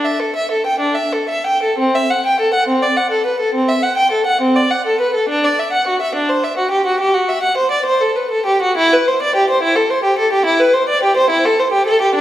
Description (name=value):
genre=classical, baroque-style suite movement for unaccompanied violin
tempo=70 BPM (dotted quarters)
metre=12/8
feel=uneven beats, rubato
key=unclear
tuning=A4 = 440 Hz
part: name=rich violin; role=solo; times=0.0-12.2 s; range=C4 to G5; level=-13 LUFS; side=equal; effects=none
room=wet recital hall reverb, RT60 1.6 s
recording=heard from further back in the room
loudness=-13 LUFS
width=side -13 dB against mid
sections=0.0-1.8 A section; 1.8-12.2 B section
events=none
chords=none